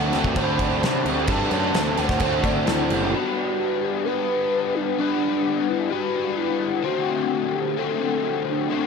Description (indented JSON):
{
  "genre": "rock, shoegaze and dream pop",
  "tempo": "130 BPM",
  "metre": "4/4",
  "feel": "straight",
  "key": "G major",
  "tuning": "A4 = 444 Hz",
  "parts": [
    { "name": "pure breathy sine lead", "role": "melody", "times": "0.0-8.9 s", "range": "D4 to B5", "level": "-26 LUFS", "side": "right 1 dB", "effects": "chorus, tape echo" },
    { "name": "electric guitar through a small old amp", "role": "arpeggios", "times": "0.0-3.1 s", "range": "G4 to D5", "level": "-31 LUFS", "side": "right 2 dB", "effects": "wide subtle chorus, tape echo" },
    { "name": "biting overdriven guitar", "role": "riff", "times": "0.0-3.1 s", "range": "D3 to A4", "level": "-28 LUFS", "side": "right 8 dB", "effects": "reverse reverb" },
    { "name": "overdriven electric guitar", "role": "riff", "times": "0.0-8.9 s", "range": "D3 to C5", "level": "-25 LUFS", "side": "left 9 dB", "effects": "analog chorus" },
    { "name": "overdriven electric guitar", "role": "riff", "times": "0.0-3.1 s", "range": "D3 to D4", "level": "-30 LUFS", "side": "right 1 dB", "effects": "ensemble chorus" },
    { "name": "fuzz picked electric bass", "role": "bass", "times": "0.0-3.1 s", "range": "F#1 to C3", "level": "-26 LUFS", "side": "equal", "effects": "overdrive" },
    { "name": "loose indie drum kit", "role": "drums", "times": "0.1-3.0 s", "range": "crash cymbal, kick drum, snare drum", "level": "-26 LUFS", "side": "right 1 dB", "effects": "none" }
  ],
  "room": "wet plate reverb, RT60 1.3 s",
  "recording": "dreamy mix soaked in reverb",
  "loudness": "-20 LUFS",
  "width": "side -5 dB against mid",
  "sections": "0.0-3.1 A section; 3.1-8.9 A section",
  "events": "none",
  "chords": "0.0 D7; 3.1 Gmaj7; 6.8 D7"
}